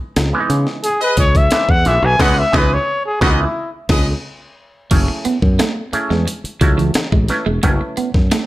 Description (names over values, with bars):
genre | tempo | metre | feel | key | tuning
funk | 88 BPM | 4/4 | straight | unclear | A4 = 444 Hz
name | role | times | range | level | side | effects
fingered electric bass | bass | 0.0-8.3 s | E1 to C#3 | -18 LUFS | equal | none
breakbeat sampler-style drum kit | drums | 0.2-8.5 s | crash cymbal, hi-hat, kick drum, snare drum | -17 LUFS | equal | none
auto-wah clav | stabs | 0.3-8.1 s | D#3 to B4 | -21 LUFS | right 2 dB | none
breathy trumpet | melody | 0.8-3.7 s | E4 to G#5 | -16 LUFS | left 1 dB | slapback echo
clear horn section | second line | 1.0-4.1 s | G#4 to D#5 | -24 LUFS | left 1 dB | none
clean electric guitar | riff | 4.9-8.4 s | E3 to B3 | -22 LUFS | right 5 dB | lush chorus
room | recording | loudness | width
light reverb | none | -14 LUFS | side -16 dB against mid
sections
0.0-4.9 A section; 4.9-8.5 B section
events
break 0.0-2.2; trumpet solo 0.0-4.9; band accent 2.2-4.9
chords
0.0 C#m9; 4.9 F#m9